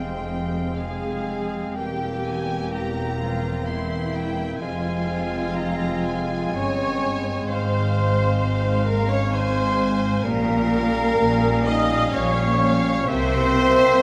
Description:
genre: classical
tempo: 64 BPM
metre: 3/4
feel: uneven beats, rubato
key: F minor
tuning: A4 = 437 Hz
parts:
  - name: warm symphonic violin section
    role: melody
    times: 0.0-14.0 s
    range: E5 to C6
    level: -38 LUFS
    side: equal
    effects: none
  - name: clear clarinet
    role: second line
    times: 0.0-14.0 s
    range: C4 to Db4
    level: -35 LUFS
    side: equal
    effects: none
  - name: clear oboe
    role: second line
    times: 0.0-14.0 s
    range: E5 to Ab5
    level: -37 LUFS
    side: equal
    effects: none
  - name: flute section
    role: second line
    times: 0.0-14.0 s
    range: C5 to Eb6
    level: -32 LUFS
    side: equal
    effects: none
  - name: warm symphonic violin section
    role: second line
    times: 0.0-14.0 s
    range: C4 to Eb5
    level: -31 LUFS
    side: equal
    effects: none
  - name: mellow bassoon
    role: accompaniment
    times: 0.0-14.0 s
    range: G3 to Bb3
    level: -33 LUFS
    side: equal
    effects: none
  - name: warm symphonic viola section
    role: accompaniment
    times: 0.0-14.0 s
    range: C4 to Eb5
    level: -34 LUFS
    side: equal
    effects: none
  - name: mellow French horn section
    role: sustained chords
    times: 0.0-14.0 s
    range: C3 to Eb4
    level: -31 LUFS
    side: equal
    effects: none
  - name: rich symphonic cello section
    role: bass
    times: 0.0-13.9 s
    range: E2 to C3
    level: -29 LUFS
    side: equal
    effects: none
  - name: rich symphonic double bass section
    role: bass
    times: 0.0-13.9 s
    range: E1 to C2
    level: -29 LUFS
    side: equal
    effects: none
room: wet concert hall reverb, RT60 2.1 s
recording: none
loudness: -22 LUFS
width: mono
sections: 0.0-14.0 A section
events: none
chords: 0.0 Fm; 1.8 C7/E; 4.6 Fm; 7.5 Fm/Ab; 10.2 Gm7b5/Bb; 13.1 C7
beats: 0.77 | 1.77 2.74 3.68 | 4.62 5.56 6.56 | 7.49 8.41 9.33 | 10.25 11.19 12.13 | 13.09

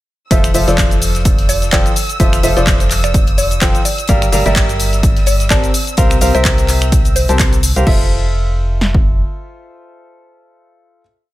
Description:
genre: piano house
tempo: 127 BPM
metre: 4/4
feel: swing 56% on 16ths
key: F major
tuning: A4 = 436 Hz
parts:
  - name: warm studio violin section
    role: sustained chords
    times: 0.3-7.9 s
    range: E6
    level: -27 LUFS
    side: right 2 dB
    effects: sidechain pumping
  - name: clear grand piano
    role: riff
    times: 0.3-11.0 s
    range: F3 to A5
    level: -18 LUFS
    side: equal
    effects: sidechain pumping, tape echo
  - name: organ-like FM bass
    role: bass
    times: 0.3-9.2 s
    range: F1 to C2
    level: -17 LUFS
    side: equal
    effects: tube saturation, sidechain pumping
  - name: deep reggae drum kit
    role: drums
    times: 0.3-7.8 s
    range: hi-hat, snare drum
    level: -32 LUFS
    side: left 4 dB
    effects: none
  - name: house drum kit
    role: drums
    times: 0.3-9.0 s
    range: kick drum, snare drum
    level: -14 LUFS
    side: equal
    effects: studio reverb
  - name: house drum kit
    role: drums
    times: 0.3-8.0 s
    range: crash cymbal, finger snaps, handclaps, hi-hat, shaker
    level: -19 LUFS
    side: left 1 dB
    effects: studio reverb
  - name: mallet-like synth pluck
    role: melody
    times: 1.5-7.4 s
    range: C5 to D5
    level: -23 LUFS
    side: equal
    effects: chorus, phaser, tape echo
room: small room ambience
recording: none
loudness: -11 LUFS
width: side -16 dB against mid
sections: 0.3-7.9 drop; 7.9-11.3 final chord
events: drop 0.3-7.9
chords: 0.3 Fmaj7; 4.1 Gm7; 5.7 C7sus4; 7.9 Fmaj7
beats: | 0.31 0.78 1.25 1.73 | 2.20 2.67 3.14 3.62 | 4.09 4.56 5.03 5.50 | 5.98 6.45 6.92 7.39 | 7.87 8.34 8.81 9.29 | 9.76 10.23 10.70

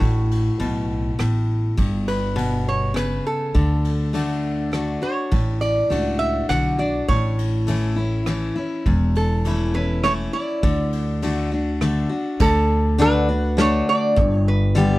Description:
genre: honky-tonk and classic country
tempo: 102 BPM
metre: 3/4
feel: straight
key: D major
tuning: A4 = 440 Hz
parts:
  - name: lap resonator guitar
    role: melody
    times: 0.0-15.0 s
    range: F#4 to F#5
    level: -24 LUFS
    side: right 2 dB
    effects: none
  - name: picked steel-string acoustic guitar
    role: accompaniment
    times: 0.0-15.0 s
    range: E2 to G4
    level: -22 LUFS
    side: left 2 dB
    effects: none
  - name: upright bass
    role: bass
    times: 0.0-15.0 s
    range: E1 to D2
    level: -22 LUFS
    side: equal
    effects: none
  - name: soft brush drum kit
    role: drums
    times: 0.0-14.9 s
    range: crash cymbal, hi-hat, kick drum, ride cymbal, rim click, snare drum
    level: -27 LUFS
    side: equal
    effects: none
room: studio ambience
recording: dry, close 1970s-style studio recording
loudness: -18 LUFS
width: side -18 dB against mid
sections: 0.0-12.4 A section; 12.4-15.0 B section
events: none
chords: 0.0 D (rootless); 1.8 G; 3.6 D; 7.1 A; 10.6 D; 14.2 G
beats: | 0.01 0.60 1.19 | 1.78 2.37 2.96 | 3.55 4.14 4.73 | 5.32 5.91 6.50 | 7.09 7.68 8.27 | 8.86 9.45 10.04 | 10.63 11.22 11.81 | 12.40 12.99 13.58 | 14.17 14.76

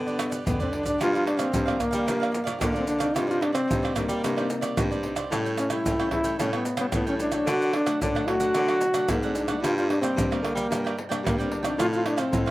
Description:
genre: samba and choro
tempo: 111 BPM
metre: 4/4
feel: straight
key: G minor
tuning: A4 = 442 Hz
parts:
  - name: warm trombone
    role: melody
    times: 0.0-12.5 s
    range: Bb3 to F#4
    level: -26 LUFS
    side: equal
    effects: none
  - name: cavaquinho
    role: accompaniment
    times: 0.0-12.5 s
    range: D4 to G5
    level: -34 LUFS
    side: right 3 dB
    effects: slapback echo
  - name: nylon-string guitar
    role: accompaniment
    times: 0.0-12.5 s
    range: G2 to E4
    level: -34 LUFS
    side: left 4 dB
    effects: none
  - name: clear baritone saxophone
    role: bass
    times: 0.0-12.5 s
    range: E2 to G3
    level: -30 LUFS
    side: equal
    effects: none
  - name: maracas, pandeiro, tamborim and surdo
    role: percussion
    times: 0.1-12.5 s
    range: none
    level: -29 LUFS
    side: right 1 dB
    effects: none
room: little or no reverb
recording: recorded outdoors, with no room sound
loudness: -23 LUFS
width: side -16 dB against mid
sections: 0.0-1.0 A section; 1.0-12.5 B section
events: drum fill 0.2-1.0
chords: 0.0 G; 1.0 Gm7; 3.2 Cmadd9/G; 5.3 A7; 7.5 D; 9.6 Gm; 11.8 F7/A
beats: 0.47 | 1.01 1.54 2.08 2.62 | 3.16 3.70 4.24 4.78 | 5.32 5.86 6.40 6.93 | 7.47 8.01 8.55 9.09 | 9.63 10.17 10.71 11.25 | 11.79 12.33

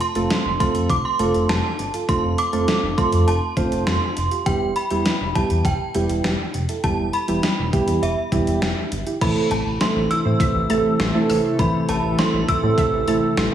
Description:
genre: synth-pop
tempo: 101 BPM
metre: 4/4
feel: straight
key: A minor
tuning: A4 = 440 Hz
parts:
  - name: synth chime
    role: melody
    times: 0.0-13.3 s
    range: E5 to E6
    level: -25 LUFS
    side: right 1 dB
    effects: ensemble chorus, tape echo
  - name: clean 12-bit digital drum machine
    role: drums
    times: 0.0-13.5 s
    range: crash cymbal, hi-hat, kick drum, snare drum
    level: -24 LUFS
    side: left 1 dB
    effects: overdrive, gated reverb
  - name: soft electric-piano-like synth keys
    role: accompaniment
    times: 0.2-13.3 s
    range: G3 to C5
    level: -22 LUFS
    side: right 3 dB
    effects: chorus
  - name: chorused synth bass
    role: bass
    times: 0.2-13.5 s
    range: E1 to A2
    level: -24 LUFS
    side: equal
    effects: none
  - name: brassy analog pad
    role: sustained chords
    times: 9.2-13.5 s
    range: C3 to A4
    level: -24 LUFS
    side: left 1 dB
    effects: chorus, tremolo
  - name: analog pluck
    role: arpeggios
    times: 9.2-13.5 s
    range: E3 to E6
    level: -30 LUFS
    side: equal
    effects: chorus, tape echo
room: moderate lush hall reverb, RT60 1.6 s, digital ambience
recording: studio reverb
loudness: -18 LUFS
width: side -10 dB against mid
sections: 0.0-9.2 A section; 9.2-13.5 B section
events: none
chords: 0.0 F; 4.5 Em; 9.2 Am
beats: 0.30 0.90 1.49 | 2.09 2.68 3.27 3.87 | 4.46 5.06 5.65 6.24 | 6.84 7.43 8.03 8.62 | 9.21 9.81 10.40 11.00 | 11.59 12.19 12.78 13.37

